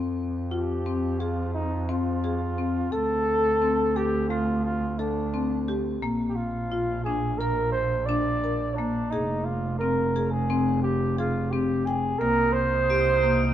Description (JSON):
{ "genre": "contemporary instrumental, chamber music in an uneven meter", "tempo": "174 BPM (eighths)", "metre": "9/8", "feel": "straight", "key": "F dorian", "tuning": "A4 = 441 Hz", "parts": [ { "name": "marimba with medium mallets", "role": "arpeggios", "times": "0.0-13.4 s", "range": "A3 to G5", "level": "-28 LUFS", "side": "left 4 dB", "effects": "none" }, { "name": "clear double bass", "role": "bass", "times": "0.0-13.5 s", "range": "F1 to F2", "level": "-28 LUFS", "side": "right 2 dB", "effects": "none" }, { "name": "breathy flugelhorn", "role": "melody", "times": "0.5-13.5 s", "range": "D4 to D5", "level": "-26 LUFS", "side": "right 1 dB", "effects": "none" }, { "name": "mellow woodwind section", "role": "sustained chords", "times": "12.2-13.5 s", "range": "C3 to Eb4", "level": "-34 LUFS", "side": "right 2 dB", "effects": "none" }, { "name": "crotales", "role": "texture", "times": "12.9-13.5 s", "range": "D7", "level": "-31 LUFS", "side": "left 2 dB", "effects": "none" } ], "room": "moderate plate reverb, RT60 3.3 s", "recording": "heard from further back in the room", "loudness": "-23 LUFS", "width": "side -11 dB against mid", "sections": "0.0-12.2 A section; 12.2-13.5 B section", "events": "none", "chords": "0.0 Fmadd9; 2.9 D5; 6.0 Bb; 9.1 Fmadd9; 12.2 Cm7", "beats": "0.17 0.51 0.86 1.20 1.55 1.89 2.24 2.58 | 2.93 3.27 3.62 3.96 4.30 4.65 4.99 5.34 5.68 | 6.03 6.37 6.71 7.06 7.40 7.74 8.09 8.43 8.77 | 9.12 9.46 9.80 10.15 10.49 10.83 11.18 11.52 11.86 | 12.20 12.54 12.89 13.23" }